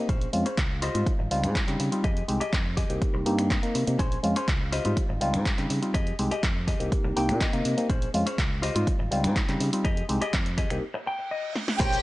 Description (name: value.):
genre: filtered disco house.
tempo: 123 BPM.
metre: 4/4.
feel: straight.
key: F minor.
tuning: A4 = 440 Hz.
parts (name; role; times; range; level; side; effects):
reed electric piano; accompaniment; 0.0-10.8 s; G3 to Bb4; -28 LUFS; equal; overdrive, phaser, sidechain pumping, low-pass filter.
clean electric guitar; riff; 0.0-12.0 s; Db4 to G5; -33 LUFS; left 2 dB; vintage 12-bit sampler grit, sidechain pumping, low-pass filter.
fingered electric bass; bass; 0.1-12.0 s; Ab1 to Db3; -30 LUFS; equal; sidechain pumping, low-pass filter.
electronic kick drum; drums; 0.1-11.9 s; none; -27 LUFS; equal; overdrive, studio reverb.
punchy analog drum machine; drums; 0.1-12.0 s; crash cymbal, finger snaps, handclaps, hi-hat, shaker, snare drum; -33 LUFS; equal; sidechain pumping on hats, studio reverb, sidechain pumping on cymbals, sidechain pumping on perc.
reverse cymbal and impact; sound effects; 11.0-12.0 s; none; -37 LUFS; right 6 dB; none.
warm symphonic violin section; sustained chords; 11.8-12.0 s; G4 to G5; -25 LUFS; right 1 dB; sidechain pumping, low-pass filter.
room: little or no reverb.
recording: dry, gritty hardware recording, nothing above 10.7 kHz.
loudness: -24 LUFS.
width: side -18 dB against mid.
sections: 0.0-11.8 A section.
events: filter sweep 0.0-11.8; clean electric guitar fill 6.9-7.9, 10.8-11.8; break 10.8-11.8; reverse cymbal 11.0-11.8; drum fill 11.6; impact 11.8.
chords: 0.1 Bbm9; 0.8 Dbmaj9#11; 2.0 Fm9; 3.0 Cm7; 4.0 Bbm9; 4.7 Dbmaj9#11; 5.9 Fm9; 6.9 Cm7; 7.9 Bbm9; 8.6 Dbmaj9#11; 9.8 Fm9; 10.8 Cm.